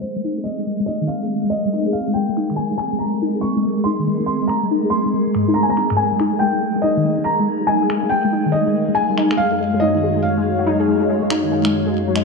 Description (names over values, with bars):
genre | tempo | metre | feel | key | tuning
IDM | 141 BPM | 4/4 | swing 62% on 16ths | Ab major | A4 = 440 Hz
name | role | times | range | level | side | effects
felt-muted upright piano | melody | 0.0-12.2 s | C5 to Db6 | -22 LUFS | left 1 dB | digital delay
hollow soft pad | sustained chords | 0.0-12.2 s | Gb2 to F5 | -23 LUFS | right 1 dB | chorus
warbly dusty pluck | arpeggios | 0.0-12.2 s | Ab2 to Ab4 | -21 LUFS | left 2 dB | ensemble chorus, digital delay
flickering grainy texture | texture | 0.0-12.2 s | Ab3 | -25 LUFS | equal | built-in reverb
electronic finger snaps | drums | 1.1-12.2 s | none | -29 LUFS | equal | overdrive, low-pass filter on hats, low-pass filter on snare, low-pass filter on room
room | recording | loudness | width
moderate echo chamber reverb, RT60 1.8 s | dark, warm production, low-pass filter | -16 LUFS | side -3 dB against mid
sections
0.0-12.2 A section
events
filter sweep on drum 0.0-12.2; filter sweep on analog synth pad 0.0-12.2; filter sweep on synth pluck 0.0-12.2; filter sweep 0.0-12.2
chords
0.0 Abadd9; 6.0 Fm11; 9.4 Ebm11/Gb